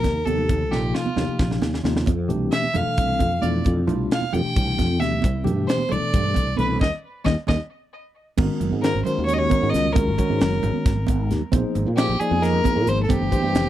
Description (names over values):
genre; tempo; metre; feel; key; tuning
electric jazz fusion; 266 BPM (eighths); 7/8; straight; Ab mixolydian from 8.4 s; A4 = 439 Hz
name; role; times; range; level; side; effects
clear violin; melody; 0.0-13.7 s; F4 to G5; -25 LUFS; equal; none
tine electric piano; accompaniment; 0.0-13.7 s; B2 to Eb5; -26 LUFS; left 1 dB; medium stereo tremolo
fretless electric bass; bass; 0.0-13.7 s; F1 to Bb2; -24 LUFS; equal; ensemble chorus
crisp fusion drum kit; drums; 0.0-13.7 s; crash cymbal, hi-hat, kick drum, snare drum; -23 LUFS; equal; none
congas; percussion; 0.0-13.7 s; none; -29 LUFS; right 10 dB; none
room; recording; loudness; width
little or no reverb; dry, close 1970s-style studio recording; -19 LUFS; side -12 dB against mid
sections
0.0-8.4 A section; 8.4-13.7 B section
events
drum fill 0.7-2.1; band accent 6.8-8.4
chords
0.0 Ebadd9; 2.1 Fmaj9; 5.2 Cmaj9; 6.8 Eb; 8.4 Ab9sus4; 11.5 Bb9sus4; 13.1 G9sus4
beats
0.04 0.26 | 0.49 0.71 0.94 1.17 1.39 1.62 1.84 | 2.07 2.29 2.52 2.75 2.97 3.20 3.42 | 3.65 3.87 4.10 4.33 4.55 4.78 5.00 | 5.23 5.45 5.68 5.90 6.13 6.35 6.58 | 6.80 7.03 7.25 7.48 7.70 7.93 8.15 | 8.38 8.61 8.83 9.05 9.28 9.50 9.73 | 9.95 10.18 10.40 10.63 10.85 11.08 11.30 | 11.53 11.75 11.97 12.20 12.42 12.65 12.87 | 13.10 13.32 13.54